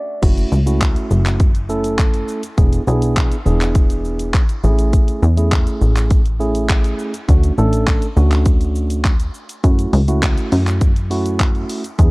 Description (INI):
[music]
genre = dance-pop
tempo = 102 BPM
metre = 4/4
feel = straight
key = F# minor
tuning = A4 = 439 Hz
[part]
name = mellow tine electric piano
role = accompaniment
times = 0.0-12.1 s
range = A3 to D5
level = -22 LUFS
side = right 2 dB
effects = sidechain pumping
[part]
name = plucky analog bass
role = bass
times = 0.2-12.1 s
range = E1 to F#2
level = -16 LUFS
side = equal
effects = sidechain pumping
[part]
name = pop drum kit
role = drums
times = 0.2-12.1 s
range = crash cymbal, handclaps, hi-hat, kick drum, shaker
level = -16 LUFS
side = equal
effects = none
[sound]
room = digital ambience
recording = worn, warbling old tape, cassette tape, warbly pitch drift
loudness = -14 LUFS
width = side -24 dB against mid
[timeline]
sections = 0.2-12.1 A section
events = break 0.0; tine electric piano fill 0.0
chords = 0.2 F#m7; 2.6 E7; 4.6 Amaj7; 7.3 Dmaj7; 9.6 F#m7